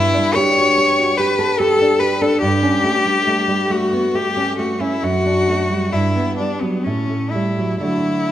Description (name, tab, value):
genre	romantic duo for cello and classical guitar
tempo	58-75 BPM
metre	3/4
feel	rubato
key	unclear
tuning	A4 = 441 Hz
part	rich cello	melody	0.0-8.3 s	B3 to C#5	-17 LUFS	left 3 dB	none
part	nylon-string guitar	accompaniment	0.0-8.3 s	F#2 to A4	-19 LUFS	right 2 dB	none
room	wet recital hall reverb, RT60 1.4 s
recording	recorded in a church or concert hall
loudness	-15 LUFS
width	side -12 dB against mid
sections	0.0-8.3 A section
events	none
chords	0.0 Gmaj9#11; 2.4 A7/G; 5.0 D/F#; 5.9 Em/G; 6.8 A6